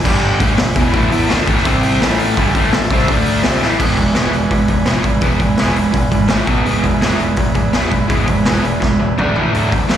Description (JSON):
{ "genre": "garage rock duo or trio", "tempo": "167 BPM", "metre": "4/4", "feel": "straight", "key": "E mixolydian from 3.8 s", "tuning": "A4 = 440 Hz", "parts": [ { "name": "overdriven combo organ", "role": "sustained chords", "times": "0.0-10.0 s", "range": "F#4 to A5", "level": "-26 LUFS", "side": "left 1 dB", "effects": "none" }, { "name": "raw garage guitar", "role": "riff", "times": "0.0-10.0 s", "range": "E2 to E4", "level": "-16 LUFS", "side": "right 1 dB", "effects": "overdrive, slapback echo" }, { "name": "growling picked electric bass", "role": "bass", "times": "0.0-10.0 s", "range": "E1 to E2", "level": "-22 LUFS", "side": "equal", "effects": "overdrive" }, { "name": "raw garage drum kit", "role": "drums", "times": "0.1-10.0 s", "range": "crash cymbal, hi-hat, kick drum, snare drum, toms", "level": "-16 LUFS", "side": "equal", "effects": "none" } ], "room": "light reverb", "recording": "live gig heard through the venue's PA, recital hall reverb", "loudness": "-12 LUFS", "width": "side -10 dB against mid", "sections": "0.0-3.8 A section; 3.8-10.0 B section", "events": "drum fill 3.6, 8.8-9.5", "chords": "0.1 G5; 0.4 E; 0.9 A5; 1.7 C5; 2.0 A5; 3.1 D5; 3.4 A5; 3.8 E; 6.3 A5; 6.5 B5; 6.7 E; 9.2 D5; 9.4 A5" }